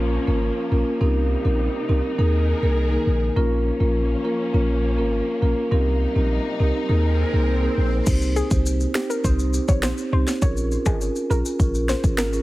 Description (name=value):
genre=dancehall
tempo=102 BPM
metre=4/4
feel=straight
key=C phrygian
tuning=A4 = 440 Hz
part: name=marimba with medium mallets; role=accompaniment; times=0.0-12.4 s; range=Bb3 to C5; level=-24 LUFS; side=right 1 dB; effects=none
part: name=warm studio string section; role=sustained chords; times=0.0-8.1 s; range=C3 to Bb4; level=-30 LUFS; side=left 2 dB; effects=sidechain pumping
part: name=warm 808-style bass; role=bass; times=0.0-12.4 s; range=Ab1 to Eb2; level=-21 LUFS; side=equal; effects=none
part: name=swell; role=sound effects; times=7.0-8.1 s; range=none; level=-33 LUFS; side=equal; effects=none
part: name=afro-pop drum kit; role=drums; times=8.1-12.3 s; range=crash cymbal, finger snaps, kick drum, snare drum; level=-23 LUFS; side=equal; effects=none
part: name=maracas and timbales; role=percussion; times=8.1-12.4 s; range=none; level=-34 LUFS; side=left 3 dB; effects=none
part: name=soft round pluck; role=melody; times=8.4-12.3 s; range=G4 to Db5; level=-29 LUFS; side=left 1 dB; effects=chorus, tape echo
room=light reverb, digital ambience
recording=heavily compressed radio sound, multiband compression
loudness=-19 LUFS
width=side -18 dB against mid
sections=0.0-8.1 A section; 8.1-12.4 B section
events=swell 7.0-8.1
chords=0.0 Bbm; 1.0 Cm7; 2.2 Ebsus4; 3.4 Bbm; 5.7 Cm7; 6.9 Ebsus4; 8.1 Cm; 10.4 Bbm7